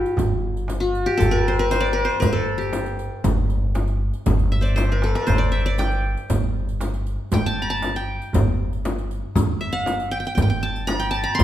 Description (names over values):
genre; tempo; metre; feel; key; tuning
Arabic maqam ensemble; 118 BPM; 4/4; straight; G maqam rast; A4 = 440 Hz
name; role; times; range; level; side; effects
qanun; melody; 0.0-11.4 s; E4 to C6; -23 LUFS; left 1 dB; none
upright bass; bass; 0.0-11.4 s; G1; -24 LUFS; equal; none
darbuka; percussion; 0.0-11.4 s; none; -28 LUFS; right 5 dB; none
riq; percussion; 0.1-11.4 s; none; -34 LUFS; right 4 dB; none
frame drum; percussion; 0.2-11.4 s; none; -26 LUFS; left 2 dB; none
room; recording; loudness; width
moderate recital hall reverb, RT60 1.4 s; minimal, uncompressed stereo recording; -19 LUFS; side -12 dB against mid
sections
0.0-11.4 A section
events
drum fill 4.8-5.3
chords
none